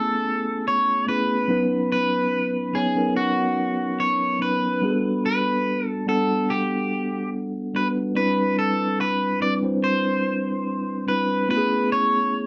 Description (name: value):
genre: R&B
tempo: 72 BPM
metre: 4/4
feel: swing 54% on 16ths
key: unclear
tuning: A4 = 440 Hz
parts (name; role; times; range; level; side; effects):
- electric guitar at the edge of break-up; melody; 0.0-12.5 s; F#4 to D5; -26 LUFS; equal; none
- mellow tine electric piano; accompaniment; 0.0-12.5 s; F#3 to G#5; -26 LUFS; equal; none
room: moderate small room reverb, RT60 0.5 s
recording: dark, warm production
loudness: -23 LUFS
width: mono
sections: 0.0-12.5 A section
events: none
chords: 0.0 Amaj9; 1.5 Bmaj9; 4.8 Gmaj9; 8.2 Cmaj9; 11.5 Amaj9